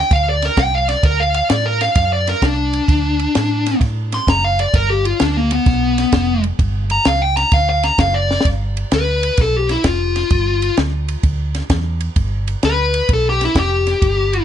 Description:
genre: electric blues shuffle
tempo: 129 BPM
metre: 4/4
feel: swing 67% on 8ths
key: G mixolydian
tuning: A4 = 437 Hz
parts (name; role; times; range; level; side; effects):
- dark smooth lead guitar; melody; 0.0-14.4 s; Bb3 to C6; -17 LUFS; left 2 dB; overdrive
- vintage muted fingered electric bass; bass; 0.1-14.4 s; F1 to A2; -19 LUFS; right 1 dB; none
- compact cocktail drum kit; drums; 0.1-14.4 s; kick drum, ride cymbal, snare drum; -19 LUFS; equal; none
room: little or no reverb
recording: nothing above 11.0 kHz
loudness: -14 LUFS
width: side -10 dB against mid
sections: 0.0-8.5 A section; 8.5-14.4 A section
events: lead electric guitar solo 0.0-8.5, 8.5-14.4; drum fill 8.2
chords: 0.0 G7(no3); 1.0 D7; 4.7 G7; 7.5 D; 8.5 G7

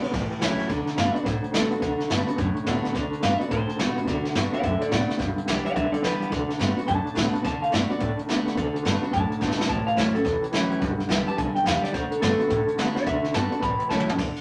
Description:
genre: rockabilly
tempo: 214 BPM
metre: 4/4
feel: swing 63% on 8ths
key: D major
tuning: A4 = 440 Hz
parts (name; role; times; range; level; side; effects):
- electric guitar through a small old amp; melody; 0.0-14.1 s; F#4 to B5; -30 LUFS; equal; none
- picked steel-string acoustic guitar; accompaniment; 0.0-14.4 s; E2 to G4; -31 LUFS; equal; none
- electric guitar through a small old amp; riff; 0.0-14.2 s; G2 to B3; -30 LUFS; equal; tremolo
- upright bass; bass; 0.0-14.4 s; G1 to C3; -34 LUFS; equal; none
- jazz brush drum kit; drums; 0.0-14.4 s; hi-hat, kick drum, ride cymbal, snare drum, toms; -32 LUFS; equal; none
room: moderate studio reverb, RT60 0.8 s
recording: none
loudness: -25 LUFS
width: mono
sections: 0.7-14.2 A section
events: drum fill 9.4, 13.9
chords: 0.1 A; 0.7 D; 5.2 G; 6.3 D; 9.7 A; 10.8 G; 11.9 D; 13.6 A

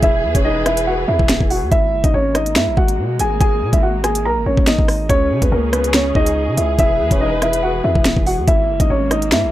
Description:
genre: hip hop, drill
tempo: 142 BPM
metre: 4/4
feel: half-time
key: G# minor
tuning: A4 = 440 Hz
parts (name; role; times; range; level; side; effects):
- dark concert grand piano; melody; 0.0-9.5 s; A#3 to A#5; -18 LUFS; equal; none
- dark symphonic string section; sustained chords; 0.0-9.5 s; C#3 to B4; -26 LUFS; right 2 dB; none
- hard-hitting 808-style bass; bass; 0.0-9.5 s; D#1 to C#3; -21 LUFS; equal; none
- drill drum kit; drums; 0.0-9.4 s; finger snaps, hi-hat, kick drum, rim click, snare drum; -17 LUFS; equal; none
room: little or no reverb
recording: dry, gritty hardware recording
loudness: -14 LUFS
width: side -14 dB against mid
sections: 0.0-9.5 A section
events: none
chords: 0.0 E; 1.7 G#sus2; 5.1 C#m; 6.8 E; 8.5 G#sus2

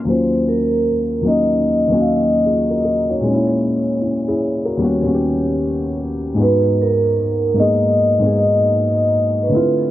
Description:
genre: hip hop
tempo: 76 BPM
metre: 4/4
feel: swing 62% on 16ths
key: unclear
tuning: A4 = 439 Hz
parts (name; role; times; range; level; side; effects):
- felt-muted upright piano; accompaniment; 0.0-9.9 s; Eb2 to Bb4; -17 LUFS; left 1 dB; cassette tape
- vibraphone with soft mallets; melody; 0.1-9.9 s; Bb4 to F5; -18 LUFS; right 1 dB; plate reverb
room: moderate studio reverb, RT60 0.6 s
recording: cassette tape, low-pass filter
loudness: -14 LUFS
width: side -14 dB against mid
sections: 0.1-9.9 A section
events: none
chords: 0.1 Ebm9; 3.2 Bbm7b5; 4.8 Eb7alt; 6.4 Abm9

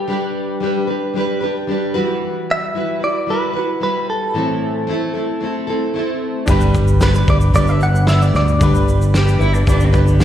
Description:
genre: acoustic pop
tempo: 113 BPM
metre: 4/4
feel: straight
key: G major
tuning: A4 = 440 Hz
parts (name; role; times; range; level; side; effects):
- direct-recorded clean electric guitar; melody; 0.0-9.6 s; G4 to F#5; -22 LUFS; equal; plate reverb, slapback echo
- nylon-string guitar; accompaniment; 0.0-10.2 s; A2 to B4; -20 LUFS; equal; double-tracked left and right, slapback echo
- warm concert grand piano; accompaniment; 6.5-10.2 s; D4 to B4; -27 LUFS; left 4 dB; plate reverb, slapback echo
- fingered electric bass; bass; 6.5-10.2 s; G1 to D2; -14 LUFS; equal; none
- loose indie drum kit; drums; 6.5-10.2 s; kick drum, shaker, snare drum; -19 LUFS; equal; none
- egg shaker; percussion; 6.5-10.2 s; none; -38 LUFS; right 1 dB; none
- warm cello; second line; 9.1-10.2 s; Bb3 to G4; -23 LUFS; right 1 dB; plate reverb, slapback echo
room: light reverb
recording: live gig heard through the venue's PA, recital hall reverb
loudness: -14 LUFS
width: side -10 dB against mid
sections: 0.0-10.2 A section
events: none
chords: 0.0 G; 1.9 Emadd9; 4.3 Am; 6.5 G

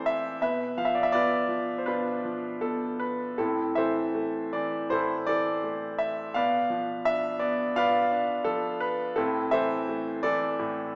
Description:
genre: classical, lyrical solo piano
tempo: 82 BPM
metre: 4/4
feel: uneven beats, rubato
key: unclear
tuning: A4 = 440 Hz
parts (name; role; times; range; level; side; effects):
- bright concert grand piano; solo; 0.0-11.0 s; A2 to F5; -25 LUFS; equal; none
room: wet scoring stage reverb, RT60 1.5 s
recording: recorded in a church or concert hall, small speaker sound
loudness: -25 LUFS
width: side -35 dB against mid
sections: 0.0-11.0 A section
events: none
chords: 0.4 Bdim; 3.4 Am; 6.4 Bdim; 9.2 Am

